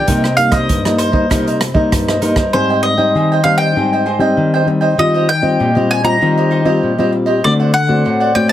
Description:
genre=samba and choro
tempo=98 BPM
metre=4/4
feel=straight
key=unclear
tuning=A4 = 442 Hz
part: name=bowl-back mandolin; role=melody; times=0.0-8.5 s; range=C5 to Bb5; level=-16 LUFS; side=equal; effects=none
part: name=cavaquinho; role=accompaniment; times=0.0-8.5 s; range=D4 to G5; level=-18 LUFS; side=right 2 dB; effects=none
part: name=nylon-string guitar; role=accompaniment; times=0.0-8.5 s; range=G2 to F#4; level=-15 LUFS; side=left 2 dB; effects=none
part: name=open jazz drum kit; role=drums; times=0.1-2.5 s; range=hi-hat, kick drum, rim click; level=-17 LUFS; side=right 1 dB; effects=none
room=moderate studio reverb, RT60 0.7 s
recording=heavily compressed radio sound, multiband compression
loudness=-11 LUFS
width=side -12 dB against mid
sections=0.0-2.5 A section; 2.5-8.5 B section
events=none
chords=0.1 Cm7; 2.5 Abmaj7; 5.0 Eb69; 7.4 D7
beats=| 0.08 0.70 1.31 1.92 | 2.54 3.15 3.76 4.38 | 4.99 5.60 6.22 6.83 | 7.44 8.06

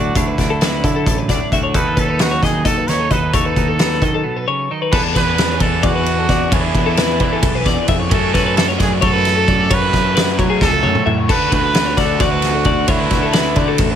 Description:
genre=math rock and midwest emo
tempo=264 BPM (eighths)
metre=7/8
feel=straight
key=unclear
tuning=A4 = 440 Hz
part: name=warm trumpet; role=melody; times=0.0-14.0 s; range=E4 to C#5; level=-20 LUFS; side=right 4 dB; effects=digital delay
part: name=twelve-string electric guitar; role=accompaniment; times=0.0-4.9 s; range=A2 to A4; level=-24 LUFS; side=right 6 dB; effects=none
part: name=twelve-string electric guitar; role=arpeggios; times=0.0-14.0 s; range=G#4 to E5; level=-21 LUFS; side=left 8 dB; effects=lush chorus, digital delay
part: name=overdriven picked electric bass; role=bass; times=0.0-14.0 s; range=A1 to F#3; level=-20 LUFS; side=equal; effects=none
part: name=loose indie drum kit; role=drums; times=0.2-13.9 s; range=crash cymbal, hi-hat, kick drum, ride cymbal, snare drum, toms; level=-18 LUFS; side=equal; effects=none
part: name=crunchy overdriven guitar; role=riff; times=4.9-14.0 s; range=D3 to G#4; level=-22 LUFS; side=right 1 dB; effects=none
room=light reverb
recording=none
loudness=-13 LUFS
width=side -9 dB against mid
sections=0.0-4.9 A section; 4.9-14.0 B section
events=break 4.2-4.9; drum fill 10.6-11.3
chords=0.0 Dmaj7; 1.7 B7/D#; 4.9 E7sus4; 8.1 F#m; 11.3 D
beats=| 0.15 0.38 0.61 0.83 1.06 1.29 1.52 | 1.74 1.97 2.20 2.43 2.65 2.88 3.11 | 3.33 3.56 3.79 4.02 4.24 4.47 4.70 | 4.93 5.15 5.38 5.61 5.83 6.06 6.29 | 6.52 6.74 6.97 7.20 7.43 7.65 7.88 | 8.11 8.33 8.56 8.79 9.02 9.24 9.47 | 9.70 9.93 10.15 10.38 10.61 10.83 11.06 | 11.29 11.52 11.74 11.97 12.20 12.42 12.65 | 12.88 13.11 13.33 13.56 13.79

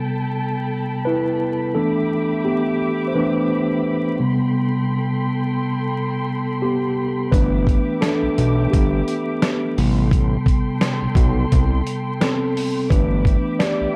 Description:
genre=lo-fi hip hop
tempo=86 BPM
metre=4/4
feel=swing 55% on 16ths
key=unclear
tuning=A4 = 439 Hz
part: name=mellow tine electric piano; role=accompaniment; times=0.0-14.0 s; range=C3 to D5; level=-22 LUFS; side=equal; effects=cassette tape, low-pass filter
part: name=warm studio string section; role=sustained chords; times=0.0-14.0 s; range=G4 to D6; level=-32 LUFS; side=equal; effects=low-pass filter
part: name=fat analog bass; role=bass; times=7.3-13.9 s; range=G1 to C2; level=-22 LUFS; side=equal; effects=none
part: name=dusty soul sampler-style drum kit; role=drums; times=7.3-13.8 s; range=hi-hat, kick drum, snare drum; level=-22 LUFS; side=equal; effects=none
room=light reverb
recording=dark, warm production, vinyl crackle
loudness=-20 LUFS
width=mono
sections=0.0-14.0 A section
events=tine electric piano solo 0.0-14.0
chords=0.0 Am9; 1.7 G6; 4.2 Am9; 7.3 G6; 9.8 Am9; 12.9 G6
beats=0.34 1.04 | 1.74 2.44 3.14 3.83 | 4.53 5.23 5.93 6.62 | 7.32 8.02 8.72 9.41 | 10.11 10.81 11.51 12.21 | 12.90 13.60

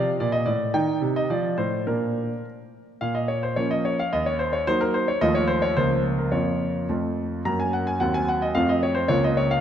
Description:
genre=classical-period piano sonatina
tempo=109 BPM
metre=2/4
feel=rubato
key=Bb major, Bb minor from 3.0 s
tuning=A4 = 440 Hz
part: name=clear grand piano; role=solo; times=0.0-9.6 s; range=Db2 to Bb5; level=-21 LUFS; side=equal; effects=none
room=wet concert hall reverb, RT60 2.0 s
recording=none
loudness=-21 LUFS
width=side -9 dB against mid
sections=0.0-3.0 A section; 3.0-9.6 B section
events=none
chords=0.2 Bb; 0.7 Cm/Eb; 1.3 F; 1.9 Bb; 3.0 Bbm; 4.1 Ebm; 5.2 F7/Eb; 5.8 Bbm/Db; 6.3 Bbm/F; 6.9 F; 7.5 Gb; 8.0 Cdim/Eb; 8.6 F; 9.1 Bbm/Db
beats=0.20 | 0.74 1.30 | 1.86 2.44 | 3.01 3.57 | 4.12 4.66 | 5.21 5.76 | 6.31 6.88 | 7.45 8.01 | 8.56 9.10

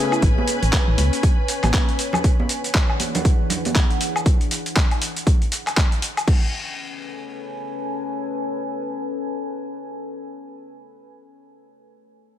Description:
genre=deep house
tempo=119 BPM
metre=4/4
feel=swing 60% on 16ths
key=A major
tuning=A4 = 440 Hz
part: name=deep dark ambient pad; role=sustained chords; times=0.0-10.6 s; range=E3 to G#5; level=-29 LUFS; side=left 2 dB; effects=chorus, built-in reverb, sidechain pumping
part: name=muted studio string section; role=texture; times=0.0-2.2 s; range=C#4 to G#5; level=-30 LUFS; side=left 3 dB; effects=sidechain pumping
part: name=soft string machine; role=texture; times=0.0-4.3 s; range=B4 to B5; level=-33 LUFS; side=equal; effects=ensemble chorus, sidechain pumping
part: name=dusty soul sampler-style drum kit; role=drums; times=0.1-6.4 s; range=crash cymbal, handclaps, hi-hat, shaker, woodblock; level=-24 LUFS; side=left 1 dB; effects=overdrive
part: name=organ-like FM bass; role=bass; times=0.2-1.7 s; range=A1 to C#2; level=-19 LUFS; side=equal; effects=sidechain pumping
part: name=electronic kick drum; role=drums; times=0.2-6.4 s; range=none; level=-18 LUFS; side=equal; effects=overdrive
part: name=congas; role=percussion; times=0.4-3.7 s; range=none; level=-28 LUFS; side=right 5 dB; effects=none
room=light reverb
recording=none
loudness=-18 LUFS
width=side -11 dB against mid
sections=0.0-6.3 A section; 6.3-10.3 B section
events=drop 0.0-6.3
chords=0.0 Amaj9; 2.2 E9; 6.3 Amaj9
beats=| 0.23 0.73 1.23 1.74 | 2.24 2.75 3.25 3.75 | 4.26 4.76 5.27 5.77 | 6.28 6.78 7.28 7.79 | 8.29 8.80 9.30 9.80

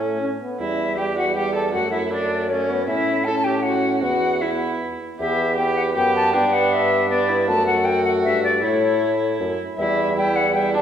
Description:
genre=classical, renaissance-style consort dance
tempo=157 BPM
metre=3/4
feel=straight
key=E dorian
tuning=A4 = 440 Hz
part: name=concert flute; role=melody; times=0.0-10.8 s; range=C#5 to A5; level=-22 LUFS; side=left 3 dB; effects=none
part: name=warm viola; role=second line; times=0.0-10.8 s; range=C#4 to A4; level=-25 LUFS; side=right 2 dB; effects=none
part: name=clear trombone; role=accompaniment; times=0.0-10.8 s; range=G3 to C#4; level=-26 LUFS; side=equal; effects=none
part: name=dark bassoon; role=bass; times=0.0-10.8 s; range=E2 to A2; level=-25 LUFS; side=right 2 dB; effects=none
room=wet scoring stage reverb, RT60 1.6 s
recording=recorded in a church or concert hall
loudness=-18 LUFS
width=side -9 dB against mid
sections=0.0-5.2 A section; 5.2-10.8 A section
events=none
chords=0.0 A; 0.6 Em; 1.7 F#m; 2.9 A; 4.0 E5; 5.2 Em; 6.3 G; 7.5 F#m; 8.6 A; 9.8 Em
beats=0.21 | 0.59 0.98 1.36 | 1.74 2.12 2.50 | 2.88 3.26 3.65 | 4.03 4.42 4.81 | 5.20 5.58 5.96 | 6.34 6.72 7.10 | 7.48 7.86 8.24 | 8.62 9.01 9.40 | 9.78 10.16 10.55

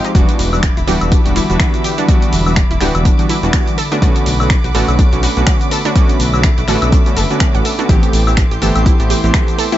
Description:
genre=deep house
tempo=124 BPM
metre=4/4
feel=swing 57% on 16ths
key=E minor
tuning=A4 = 439 Hz
part: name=airy breathy pad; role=sustained chords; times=0.0-9.8 s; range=D3 to C6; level=-24 LUFS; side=equal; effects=chorus, sidechain pumping
part: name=analog pluck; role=arpeggios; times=0.0-9.8 s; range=D4 to F#5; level=-24 LUFS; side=right 1 dB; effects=chorus, sidechain pumping, digital delay
part: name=warm analog keys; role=stabs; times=0.0-9.8 s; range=D3 to G4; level=-18 LUFS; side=right 1 dB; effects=chorus, vintage 12-bit sampler grit, sidechain pumping, ping-pong delay
part: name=punchy analog drum machine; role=drums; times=0.0-9.8 s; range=finger snaps, hi-hat, shaker, woodblock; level=-21 LUFS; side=left 1 dB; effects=none
part: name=dark studio violin section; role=texture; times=0.0-9.8 s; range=D6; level=-28 LUFS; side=right 4 dB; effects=none
part: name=smooth synth bass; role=bass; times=0.1-9.3 s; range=D1 to B1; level=-17 LUFS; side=equal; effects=sidechain pumping
part: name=electronic kick drum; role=drums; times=0.1-9.5 s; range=none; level=-13 LUFS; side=equal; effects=overdrive
room=digital ambience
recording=nothing above 7.8 kHz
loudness=-11 LUFS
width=side -13 dB against mid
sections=0.0-9.8 A section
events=none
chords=0.1 Em7; 3.8 Bm7; 7.9 Am7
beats=| 0.15 0.63 1.12 1.60 | 2.08 2.57 3.05 3.54 | 4.02 4.50 4.99 5.47 | 5.96 6.44 6.92 7.41 | 7.89 8.38 8.86 9.34

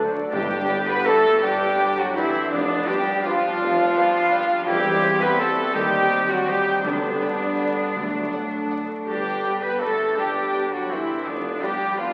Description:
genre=classical, orchestral ballroom waltz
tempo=165 BPM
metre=3/4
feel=uneven beats, rubato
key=G major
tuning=A4 = 440 Hz
part: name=warm symphonic violin section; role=melody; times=0.0-12.1 s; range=none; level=barely audible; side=none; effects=none
part: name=clear oboe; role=second line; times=0.0-12.1 s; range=B3 to G4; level=-32 LUFS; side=equal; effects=none
part: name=flute section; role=second line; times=0.0-12.1 s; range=D5 to B5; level=-35 LUFS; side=equal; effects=none
part: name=warm symphonic violin section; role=second line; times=0.0-12.1 s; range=B4 to D5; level=-42 LUFS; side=equal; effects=none
part: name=dark symphonic viola section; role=accompaniment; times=0.0-12.1 s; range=D4 to B4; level=-33 LUFS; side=equal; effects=none
part: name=mellow French horn section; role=sustained chords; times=0.0-12.1 s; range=D3 to B3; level=-29 LUFS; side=equal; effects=none
part: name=warm trombone section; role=sustained chords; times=0.0-12.1 s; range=F#3 to C4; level=-36 LUFS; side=equal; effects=none
part: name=concert harp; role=arpeggios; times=0.0-12.1 s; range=G2 to C6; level=-34 LUFS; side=equal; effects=none
part: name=dark symphonic double bass section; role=bass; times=0.0-11.6 s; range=D2 to G2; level=-44 LUFS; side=equal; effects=none
part: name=warm symphonic cello section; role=bass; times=0.0-12.1 s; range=D3 to B4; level=-26 LUFS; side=equal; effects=none
part: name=warm tuba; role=bass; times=0.0-11.6 s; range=E1 to Eb2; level=-36 LUFS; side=equal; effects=none
part: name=timpani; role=percussion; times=0.3-0.8, 6.8-8.5 s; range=G2 to D3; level=-36 LUFS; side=equal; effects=none
room=wet concert hall reverb, RT60 2.4 s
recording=very old 78 rpm record, vinyl crackle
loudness=-22 LUFS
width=mono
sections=0.3-12.1 A section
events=none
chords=0.3 G; 2.5 G7/F; 4.7 C/E; 5.7 Cm/Eb; 6.8 G/D; 8.0 D; 9.1 G; 11.3 G7/F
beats=| 0.32 0.69 1.06 | 1.42 1.78 2.16 | 2.52 2.88 3.25 | 3.60 3.95 4.32 | 4.67 5.02 5.39 | 5.75 6.11 6.48 | 6.84 7.21 7.60 | 7.96 8.32 8.71 | 9.07 9.44 9.81 | 10.17 10.53 10.91 | 11.26 11.62 11.98

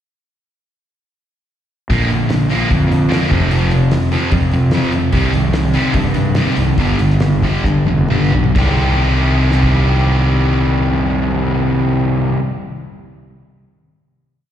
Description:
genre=classic rock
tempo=126-149 BPM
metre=4/4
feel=straight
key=C minor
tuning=A4 = 438 Hz
part: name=sludgy distorted guitar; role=riff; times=1.9-12.4 s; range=F2 to G4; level=-16 LUFS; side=equal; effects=overdrive
part: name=fuzz fingered electric bass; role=bass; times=1.9-12.3 s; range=F1 to G2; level=-16 LUFS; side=equal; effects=overdrive
part: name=cloth-damped thuddy drum kit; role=drums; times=1.9-9.7 s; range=crash cymbal, hi-hat, kick drum, snare drum, toms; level=-21 LUFS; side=equal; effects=none
room=light reverb, small room ambience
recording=live gig heard through the venue's PA, recital hall reverb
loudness=-12 LUFS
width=side -10 dB against mid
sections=1.9-8.6 verse; 8.6-12.4 final chord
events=slowing down 5.1-8.6; drum fill 7.7-8.6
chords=1.9 Bb; 3.3 F5; 5.1 Cm; 6.8 G5; 8.6 Cm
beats=| 1.91 2.31 2.72 3.12 | 3.53 3.93 4.33 4.74 | 5.14 5.54 5.95 6.36 | 6.78 7.21 7.65 8.10 | 8.57 9.04 9.52 9.99 | 10.47 10.95 11.42 11.90

